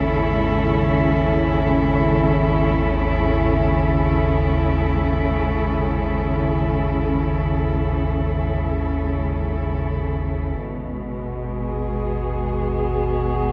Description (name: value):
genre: dark ambient drone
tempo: free time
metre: none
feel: none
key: unclear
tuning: A4 = 440 Hz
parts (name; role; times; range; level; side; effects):
- muted studio cello section; sustained chords; 0.0-13.5 s; G#2 to A4; -23 LUFS; equal; none
- deep rumbling drone; drone; 0.0-13.5 s; G#1 to D#2; -25 LUFS; equal; built-in reverb
- metallic inharmonic drone; texture; 11.3-13.5 s; F#4; -31 LUFS; equal; chorus, built-in reverb
room: wet cathedral reverb, RT60 5.1 s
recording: none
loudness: -21 LUFS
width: mono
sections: 0.0-10.6 A section; 10.6-13.5 B section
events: filter sweep on synth drone 10.6-13.5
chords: 0.0 A/G#; 10.6 G#m